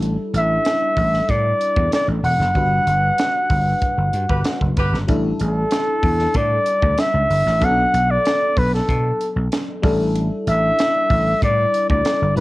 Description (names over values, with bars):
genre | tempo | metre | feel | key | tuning
polished 1980s jazz-funk pop | 95 BPM | 4/4 | straight | unclear | A4 = 437 Hz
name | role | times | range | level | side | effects
FM electric piano | accompaniment | 0.0-12.4 s | F#3 to B4 | -26 LUFS | left 2 dB | lush chorus, cassette tape
vintage slap bass | bass | 0.0-12.4 s | E1 to B2 | -20 LUFS | equal | none
crisp fusion drum kit | drums | 0.0-12.4 s | hi-hat, kick drum, snare drum | -23 LUFS | equal | cassette tape
breathy flugelhorn | melody | 0.4-12.4 s | A4 to F#5 | -18 LUFS | equal | none
warm horn section | second line | 4.3-5.0 s | B3 to B4 | -24 LUFS | equal | cassette tape
room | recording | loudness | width
light reverb | home recording on cassette | -16 LUFS | side -18 dB against mid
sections
0.0-12.4 A section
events
band accent 2.6-5.1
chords
0.0 A7sus4; 2.6 Gmaj7; 5.1 A7sus4; 7.6 Bm7; 9.8 A7sus4